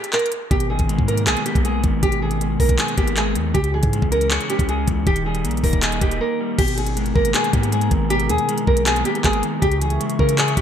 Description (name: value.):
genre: hip hop, trap.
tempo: 158 BPM.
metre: 4/4.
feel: half-time.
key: G# harmonic minor.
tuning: A4 = 443 Hz.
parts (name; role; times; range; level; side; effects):
nylon-string guitar; melody; 0.0-10.6 s; G4 to A#4; -22 LUFS; right 1 dB; lush chorus, low-pass filter.
trap drum kit; drums; 0.0-10.6 s; crash cymbal, handclaps, hi-hat, kick drum; -21 LUFS; equal; gated reverb.
electric guitar at the edge of break-up; accompaniment; 0.5-10.6 s; B2 to D#5; -24 LUFS; left 1 dB; low-pass filter.
long sustained 808-style bass; bass; 0.5-10.6 s; D#1 to C#3; -23 LUFS; equal; none.
dark analog pad; sustained chords; 6.6-10.6 s; G#4 to C#6; -33 LUFS; right 3 dB; chorus.
room: light reverb.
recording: bright 1980s-style digital production.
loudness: -17 LUFS.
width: side -9 dB against mid.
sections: 0.0-6.6 A section; 6.6-10.6 B section.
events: break 0.0-0.5, 6.2-6.6.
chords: 0.0 N.C.; 0.5 G#madd9; 3.5 C#m; 5.1 D#; 6.6 G#madd9; 9.6 C#m.